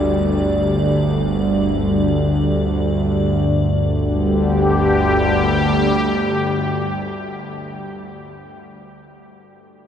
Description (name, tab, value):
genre	dark ambient drone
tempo	free time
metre	none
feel	none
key	unclear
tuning	A4 = 440 Hz
part	sweeping resonant pad	sustained chords	0.0-7.9 s	G2 to G4	-19 LUFS	equal	chorus
part	bowed-like drone	drone	0.0-7.4 s	G1 to D2	-20 LUFS	equal	built-in reverb
part	icy glass pad	texture	0.0-3.5 s	D5	-28 LUFS	equal	chorus, built-in reverb
room	wet huge ambient reverb, RT60 7.8 s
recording	none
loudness	-15 LUFS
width	side -9 dB against mid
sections	0.0-3.5 A section; 3.5-7.9 B section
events	none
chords	0.0 G5